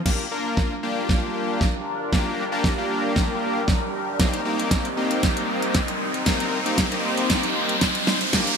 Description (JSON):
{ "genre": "dance-pop", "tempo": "116 BPM", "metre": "4/4", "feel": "straight", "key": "Bb major", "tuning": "A4 = 437 Hz", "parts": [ { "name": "big bright polysynth", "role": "accompaniment", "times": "0.1-8.5 s", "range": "Bb3 to Bb4", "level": "-26 LUFS", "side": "left 2 dB", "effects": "chorus, sidechain pumping" }, { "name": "sweeping resonant pad", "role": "sustained chords", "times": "0.1-8.6 s", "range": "G3 to C5", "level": "-28 LUFS", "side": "right 1 dB", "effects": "chorus, sidechain pumping" }, { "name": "smooth R&B drum kit", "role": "drums", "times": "0.1-8.6 s", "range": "crash cymbal, hi-hat, kick drum, snare drum", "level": "-23 LUFS", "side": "right 1 dB", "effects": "gated reverb" }, { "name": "riser", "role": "sound effects", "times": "1.8-8.6 s", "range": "none", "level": "-28 LUFS", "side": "right 1 dB", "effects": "none" } ], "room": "moderate plate reverb, RT60 2.0 s", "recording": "bright 1980s-style digital production, high-pass filter", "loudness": "-20 LUFS", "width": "side -6 dB against mid", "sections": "0.1-8.6 A section", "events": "build-up 0.1-8.6; drum fill 0.1-8.6; filter sweep 0.1-8.6; riser 1.8-8.6", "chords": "0.1 Bb6; 4.2 Cm7", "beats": "| 0.06 0.57 1.09 1.61 | 2.13 2.64 3.16 3.68 | 4.20 4.71 5.23 5.75 | 6.26 6.78 7.30 7.82 | 8.33" }